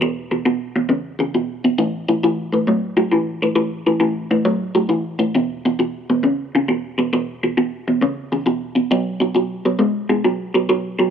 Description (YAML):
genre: blues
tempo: 135 BPM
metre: 4/4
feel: swing 68% on 8ths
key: unclear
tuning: A4 = 440 Hz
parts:
  - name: electric guitar through a small old amp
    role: solo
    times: 0.0-11.1 s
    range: E2 to G#3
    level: -17 LUFS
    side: equal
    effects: phaser
room: light reverb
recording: none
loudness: -17 LUFS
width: side -8 dB against mid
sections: 0.0-11.1 A section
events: none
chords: 0.0 E5; 1.8 A5; 5.4 E5; 8.9 B5